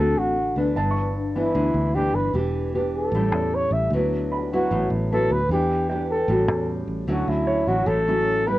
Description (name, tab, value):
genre	bossa nova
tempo	152 BPM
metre	4/4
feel	straight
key	D major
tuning	A4 = 440 Hz
part	breathy flugelhorn	melody	0.0-8.6 s	E4 to E5	-23 LUFS	equal	none
part	nylon-string guitar	accompaniment	0.0-8.6 s	G2 to G4	-24 LUFS	equal	cassette tape
part	fingered electric bass	bass	0.0-8.6 s	E1 to E2	-26 LUFS	equal	none
part	warm baby grand piano	accompaniment	0.8-8.6 s	C#5 to C#6	-31 LUFS	right 3 dB	cassette tape
room	moderate booth ambience, RT60 0.2 s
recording	home recording on cassette, nothing above 10.6 kHz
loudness	-20 LUFS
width	side -16 dB against mid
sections	0.0-7.1 A section; 7.1-8.6 B section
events	none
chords	0.0 D7; 0.8 G6; 2.3 Em7; 3.1 A7; 3.9 D69; 5.5 Em7; 6.3 A6; 7.1 Dmaj9